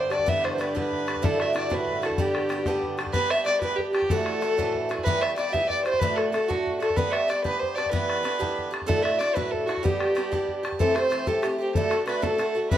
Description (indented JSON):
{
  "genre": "celtic folk, Celtic jig",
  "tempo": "125 BPM (dotted quarters)",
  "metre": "6/8",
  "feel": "straight",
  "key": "G major",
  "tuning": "A4 = 440 Hz",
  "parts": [
    { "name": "dark fiddle", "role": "melody", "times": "0.0-12.8 s", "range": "F#4 to F#5", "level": "-26 LUFS", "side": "right 1 dB", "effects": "none" },
    { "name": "mellow hollow baroque flute", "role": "second line", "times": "0.0-12.8 s", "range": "F#4 to F#5", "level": "-30 LUFS", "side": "left 4 dB", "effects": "none" },
    { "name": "picked swing-style acoustic guitar", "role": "accompaniment", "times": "0.0-12.8 s", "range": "D2 to G4", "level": "-29 LUFS", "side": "right 2 dB", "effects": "none" },
    { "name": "accordion", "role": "drone", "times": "0.0-3.2 s", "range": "G2 to D3", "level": "-33 LUFS", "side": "left 3 dB", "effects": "none" },
    { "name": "bodhran", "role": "percussion", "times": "0.1-12.8 s", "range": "none", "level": "-30 LUFS", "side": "left 2 dB", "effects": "none" }
  ],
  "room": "moderate studio reverb, RT60 0.6 s",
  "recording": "none",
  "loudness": "-22 LUFS",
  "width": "side -11 dB against mid",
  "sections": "0.0-3.1 A section; 3.1-10.8 A section; 10.8-12.8 B section",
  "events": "none",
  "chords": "0.3 Em7; 1.2 Dadd9; 2.2 G; 4.1 Dadd9; 5.1 Em; 6.0 D; 7.0 G; 7.9 Em7; 8.9 Dadd9; 9.8 G; 10.8 Am7; 11.8 D"
}